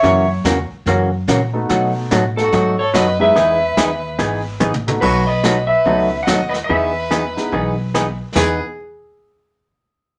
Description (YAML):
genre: country, western swing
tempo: 144 BPM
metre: 4/4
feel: swing 64% on 8ths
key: E major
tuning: A4 = 440 Hz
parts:
  - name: clean lap steel guitar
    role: melody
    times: 0.0-8.6 s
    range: A4 to F#5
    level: -20 LUFS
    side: equal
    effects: none
  - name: clear fiddle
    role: second line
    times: 0.0-8.6 s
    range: F#4 to D#5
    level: -27 LUFS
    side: equal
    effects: none
  - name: vintage hollow-body jazz guitar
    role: accompaniment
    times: 0.0-8.6 s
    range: B2 to G#4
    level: -20 LUFS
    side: equal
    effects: none
  - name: warm upright piano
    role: accompaniment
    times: 0.0-8.6 s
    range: G#3 to A#4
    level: -26 LUFS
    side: equal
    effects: none
  - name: upright bass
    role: bass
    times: 0.0-8.6 s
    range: G#1 to B2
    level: -25 LUFS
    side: equal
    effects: none
  - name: vintage brush drum kit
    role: drums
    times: 0.0-8.7 s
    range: brushed snare drum, crash cymbal, hi-hat, kick drum, snare drum, toms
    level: -27 LUFS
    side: equal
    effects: none
room: moderate studio ambience, RT60 0.5 s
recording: none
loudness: -17 LUFS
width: mono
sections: 0.0-5.0 A section; 5.0-8.4 B section; 8.4-10.0 C section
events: drum fill 4.6-5.0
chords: 0.0 F#7; 1.7 B7; 3.4 Emaj7; 5.0 B7; 6.7 Emaj7